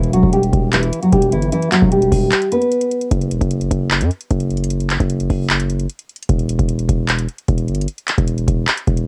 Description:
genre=hip hop, trap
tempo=151 BPM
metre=4/4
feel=half-time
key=unclear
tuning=A4 = 438 Hz
part: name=nylon-string guitar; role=melody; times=0.0-3.1 s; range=E3 to B4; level=-18 LUFS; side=equal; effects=low-pass filter, cassette tape
part: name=distorted 808-style bass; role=bass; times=0.0-9.1 s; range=E1 to F#2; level=-20 LUFS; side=equal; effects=distortion
part: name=booming analog drum machine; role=drums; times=0.0-9.1 s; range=handclaps, hi-hat, kick drum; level=-22 LUFS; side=equal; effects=cassette tape
room=moderate studio reverb, RT60 0.6 s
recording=home recording on cassette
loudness=-17 LUFS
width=mono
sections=0.0-3.1 A section; 3.1-9.1 B section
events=break 2.3-3.1, 3.1-9.1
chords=0.0 Em; 3.1 N.C.

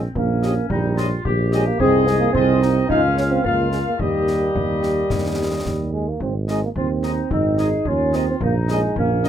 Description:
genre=military-style march for wind band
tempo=109 BPM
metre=2/4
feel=straight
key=Ab major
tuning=A4 = 440 Hz
part: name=warm woodwind section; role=second line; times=0.0-9.3 s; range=C4 to Ab4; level=-26 LUFS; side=left 5 dB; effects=none
part: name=mellow tuba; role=bass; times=0.0-9.3 s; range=Ab1 to Eb2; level=-22 LUFS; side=right 2 dB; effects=none
part: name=warm euphonium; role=second line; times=0.2-9.3 s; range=G3 to Eb4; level=-22 LUFS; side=right 3 dB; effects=none
part: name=concert bass drum and concert snare drum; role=drums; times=0.2-9.3 s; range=none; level=-29 LUFS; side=left 2 dB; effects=none
part: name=bright trumpet section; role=melody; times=0.4-9.3 s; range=Eb5 to F5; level=-28 LUFS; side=left 2 dB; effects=none
part: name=dark French horn section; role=accompaniment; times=0.4-9.3 s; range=G3 to Ab4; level=-25 LUFS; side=left 3 dB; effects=none
room=little or no reverb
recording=close, detailed microphones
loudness=-17 LUFS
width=side -10 dB against mid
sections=0.0-9.3 A section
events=none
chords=0.0 Eb7/Bb; 1.8 Ab/C; 2.9 Bbm7/Db; 4.0 Eb; 6.2 Ab; 8.4 Eb7/Bb

